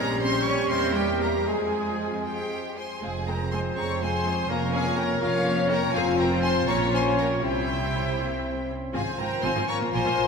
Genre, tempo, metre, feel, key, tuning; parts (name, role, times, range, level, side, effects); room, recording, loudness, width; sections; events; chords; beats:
quick classical-period movement for symphony orchestra; 81 BPM (dotted quarters); 6/8; rubato; F minor; A4 = 444 Hz
rich chamber violin section; melody; 0.0-10.3 s; F5 to Db6; -33 LUFS; left 2 dB
rich chamber violin section; second line; 0.0-10.3 s; C4 to Db5; -34 LUFS; left 3 dB
silver concert flute; second line; 0.0-10.3 s; C5 to Bb5; -32 LUFS; left 4 dB
warm clarinet; second line; 0.0-10.3 s; E4 to Db5; -37 LUFS; left 1 dB
mellow bassoon; accompaniment; 0.0-10.3 s; G3 to Db4; -35 LUFS; equal
rich chamber viola section; accompaniment; 0.0-10.2 s; F3 to F4; -33 LUFS; left 1 dB
dark French horn section; sustained chords; 0.0-10.3 s; F3 to Ab4; -31 LUFS; left 1 dB
warm trumpet section; stabs; 0.0-10.3 s; G4 to Db5; -32 LUFS; right 1 dB
rich studio cello section; bass; 0.0-10.2 s; F2 to Db4; -32 LUFS; right 2 dB
warm symphonic double bass section; bass; 0.0-10.2 s; F1 to F2; -32 LUFS; right 4 dB
wet concert hall reverb, RT60 2.5 s; minimal, uncompressed stereo recording; -23 LUFS; side -5 dB against mid
0.0-3.0 A section; 3.0-10.3 B section
0.0 Gdim/Bb; 0.7 C7/E; 1.5 Fm; 4.5 Bbm/F; 5.9 F5; 6.7 Bbm; 7.4 C; 8.9 Fm; 9.7 Bb5
0.71 | 1.48 2.26 | 3.03 3.77 | 4.50 5.22 | 5.95 6.68 | 7.44 8.19 | 8.95 9.69